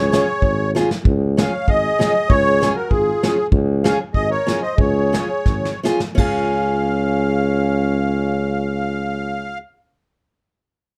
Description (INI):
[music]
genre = alpine folk, alpine dance band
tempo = 81-98 BPM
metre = 2/4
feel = swing 53% on 8ths, rubato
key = Db major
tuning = A4 = 441 Hz
[part]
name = musette accordion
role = melody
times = 0.0-9.6 s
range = Ab4 to F5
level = -23 LUFS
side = equal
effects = none
[part]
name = dark trumpet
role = second line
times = 0.0-9.6 s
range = Db4 to Db5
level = -30 LUFS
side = equal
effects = none
[part]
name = mellow tuba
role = bass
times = 0.0-9.6 s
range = Ab1 to Db2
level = -23 LUFS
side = equal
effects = none
[part]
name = picked acoustic archtop guitar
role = accompaniment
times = 0.1-9.6 s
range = Db4 to Ab4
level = -25 LUFS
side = equal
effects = none
[part]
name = soft brush drum kit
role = drums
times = 0.1-6.4 s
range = crash cymbal, hi-hat, kick drum, snare drum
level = -22 LUFS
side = equal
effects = none
[sound]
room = light reverb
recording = dark, warm production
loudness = -19 LUFS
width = mono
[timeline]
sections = 0.0-1.0 A section; 1.0-6.2 B section; 6.2-9.1 C section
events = drum fill 0.7-1.0, 5.5-6.2; slowing down 3.5-6.2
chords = 0.0 Db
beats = 0.41 | 1.04 1.67 | 2.29 2.90 | 3.52 4.14 | 4.78 5.45 | 6.17 6.91 | 7.64 8.36